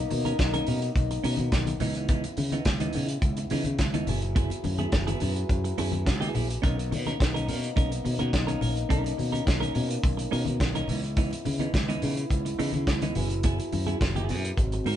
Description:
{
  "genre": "disco",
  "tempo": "106 BPM",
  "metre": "4/4",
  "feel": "straight",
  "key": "unclear",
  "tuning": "A4 = 442 Hz",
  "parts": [
    { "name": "dark French horn section", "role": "sustained chords", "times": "0.0-15.0 s", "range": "C#3 to B4", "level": "-34 LUFS", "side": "left 2 dB", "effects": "none" },
    { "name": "modern bright fingered electric bass", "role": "bass", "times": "0.0-15.0 s", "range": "F#1 to C#3", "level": "-29 LUFS", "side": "equal", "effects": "none" },
    { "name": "semi-hollow electric guitar", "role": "accompaniment", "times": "0.1-15.0 s", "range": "E3 to A#4", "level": "-33 LUFS", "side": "right 4 dB", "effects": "spring reverb" },
    { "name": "warm soul drum kit", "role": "drums", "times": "0.1-15.0 s", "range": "hi-hat, kick drum, snare drum", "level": "-28 LUFS", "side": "equal", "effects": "none" },
    { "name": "congas", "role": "percussion", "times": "0.1-15.0 s", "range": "none", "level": "-35 LUFS", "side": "left 5 dB", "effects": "none" }
  ],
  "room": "moderate studio ambience, RT60 0.5 s",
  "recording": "band playing live in one room, nothing above 10.3 kHz",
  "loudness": "-24 LUFS",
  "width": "side -11 dB against mid",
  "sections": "0.0-15.0 A section",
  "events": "none",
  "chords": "0.0 Bmaj9; 1.8 C#m9; 4.1 F#9sus4; 6.6 Bmaj9; 10.9 C#m9; 13.2 F#9sus4"
}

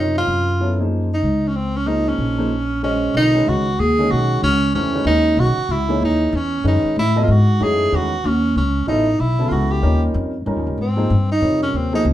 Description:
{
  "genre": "modal jazz",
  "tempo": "188 BPM",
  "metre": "3/4",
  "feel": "swing 62% on 8ths",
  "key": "B mixolydian from 3.1 s",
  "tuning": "A4 = 441 Hz",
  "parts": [
    { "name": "clear tenor saxophone", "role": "melody", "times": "0.0-12.1 s", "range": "C4 to G#4", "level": "-19 LUFS", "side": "right 1 dB", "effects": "none" },
    { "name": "warm grand piano", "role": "accompaniment", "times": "0.0-12.0 s", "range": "C3 to Eb5", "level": "-23 LUFS", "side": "equal", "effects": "none" },
    { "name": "upright bass", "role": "bass", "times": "0.0-12.1 s", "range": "A1 to A2", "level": "-19 LUFS", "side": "equal", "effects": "none" }
  ],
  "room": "wet studio reverb, RT60 0.5 s",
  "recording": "heard from further back in the room",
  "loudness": "-16 LUFS",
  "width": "side -13 dB against mid",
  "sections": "0.0-3.1 A section; 3.1-10.8 B section; 10.8-12.1 C section",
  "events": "tenor saxophone solo 10.8-12.1",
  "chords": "0.0 Gbmaj9; 3.1 Bmaj9; 7.0 Amaj9; 9.8 D#9; 10.8 Abmaj9"
}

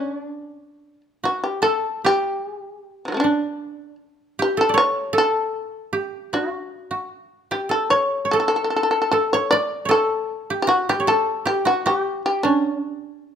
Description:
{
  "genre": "japanese traditional, Japanese chamber music",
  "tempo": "76 BPM",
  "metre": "2/4",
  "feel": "uneven beats, rubato",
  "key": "D ryukyu",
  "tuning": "A4 = 441 Hz",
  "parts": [
    { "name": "shamisen", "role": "melody", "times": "0.0-13.3 s", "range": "C#3 to D5", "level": "-20 LUFS", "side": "left 1 dB", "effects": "none" },
    { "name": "koto", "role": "second line", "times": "0.0-13.3 s", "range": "D4 to D5", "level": "-23 LUFS", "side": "right 2 dB", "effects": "none" }
  ],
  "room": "light reverb",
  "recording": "close, detailed microphones",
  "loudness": "-19 LUFS",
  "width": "side -8 dB against mid",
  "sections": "0.0-1.6 A section; 1.6-13.3 B section",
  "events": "none",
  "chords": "none"
}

